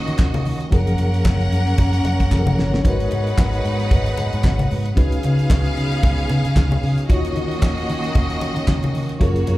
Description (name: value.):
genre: disco.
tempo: 113 BPM.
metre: 4/4.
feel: swing 56% on 16ths.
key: unclear.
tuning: A4 = 442 Hz.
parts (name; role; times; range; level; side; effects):
clear studio string section; second line; 0.0-9.6 s; A#3 to F#5; -26 LUFS; equal; slapback echo.
reed electric piano; accompaniment; 0.0-9.6 s; C#3 to C#5; -27 LUFS; left 2 dB; fast tremolo.
mellow French horn section; sustained chords; 0.0-9.6 s; C#3 to E#5; -29 LUFS; equal; none.
vintage muted fingered electric bass; bass; 0.0-9.6 s; F#1 to D#3; -20 LUFS; equal; none.
damped 70s drum kit; drums; 0.1-9.6 s; handclaps, hi-hat, kick drum, snare drum; -18 LUFS; equal; none.
congas; percussion; 0.2-9.6 s; none; -27 LUFS; left 3 dB; none.
group handclap; percussion; 0.2-8.8 s; none; -36 LUFS; right 1 dB; none.
room: little or no reverb.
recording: live gig heard through the venue's PA, club reverb.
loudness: -16 LUFS.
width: side -17 dB against mid.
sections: 0.0-9.6 A section.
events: drum fill 2.3-2.8.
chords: 0.0 D#m7; 0.7 F#maj7; 2.8 G#m9; 5.0 C#9sus4; 7.1 D#m7.